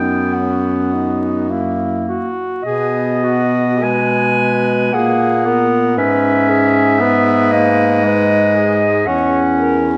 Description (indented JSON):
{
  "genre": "classical, lyrical piece for single-reed quartet",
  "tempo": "48-60 BPM",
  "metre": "3/4",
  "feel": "rubato",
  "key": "B major",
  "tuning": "A4 = 440 Hz",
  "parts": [
    { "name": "warm clarinet", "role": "melody", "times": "0.0-9.8 s", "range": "D#5 to G#5", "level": "-20 LUFS", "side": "equal", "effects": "none" },
    { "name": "clear alto saxophone", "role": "second line", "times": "0.0-9.9 s", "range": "C#4 to C#5", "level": "-22 LUFS", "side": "equal", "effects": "none" },
    { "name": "clear clarinet", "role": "accompaniment", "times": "0.0-10.0 s", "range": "G#3 to C#4", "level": "-20 LUFS", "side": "equal", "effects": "none" },
    { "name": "warm baritone saxophone", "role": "bass", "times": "0.0-10.0 s", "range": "E2 to B2", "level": "-21 LUFS", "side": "equal", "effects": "none" }
  ],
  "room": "moderate scoring stage reverb, RT60 1.7 s",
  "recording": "vinyl crackle",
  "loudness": "-15 LUFS",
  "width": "mono",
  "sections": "0.0-2.6 A section; 2.6-10.0 B section",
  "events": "none",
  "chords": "0.0 B/F#; 1.5 F#; 2.6 B; 6.0 G#m; 9.1 C#m/E"
}